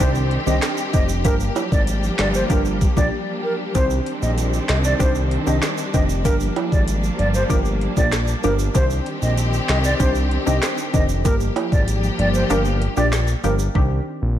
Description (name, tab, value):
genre	dancehall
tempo	96 BPM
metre	4/4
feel	straight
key	C minor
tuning	A4 = 442 Hz
part	hollow concert flute	melody	0.0-13.5 s	Bb4 to Eb5	-25 LUFS	equal	ping-pong delay
part	punchy chord stab	accompaniment	0.0-14.3 s	Eb3 to G4	-25 LUFS	equal	chorus
part	warm studio string section	sustained chords	0.0-13.7 s	Eb3 to G4	-26 LUFS	equal	sidechain pumping
part	fat analog bass	bass	0.0-14.4 s	F1 to C2	-21 LUFS	equal	none
part	island pop drum kit	drums	0.0-13.9 s	handclaps, hi-hat, kick drum, rim click, snare drum	-21 LUFS	equal	overdrive
part	tube shaker and timbales	percussion	0.0-13.7 s	none	-31 LUFS	right 8 dB	none
room	light reverb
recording	none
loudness	-17 LUFS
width	side -11 dB against mid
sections	0.0-13.8 A section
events	break 3.1-3.8; kick muted 12.5-13.8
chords	0.0 Cmadd9; 1.2 Gm7; 3.8 Cmadd9; 6.2 Gm7; 8.8 Cmadd9; 11.2 Gm7; 13.8 Cmadd9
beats	0.00 0.62 | 1.25 1.88 2.50 3.12 | 3.75 4.38 5.00 5.62 | 6.25 6.88 7.50 8.12 | 8.75 9.38 10.00 10.62 | 11.25 11.88 12.50 13.12 | 13.75 14.38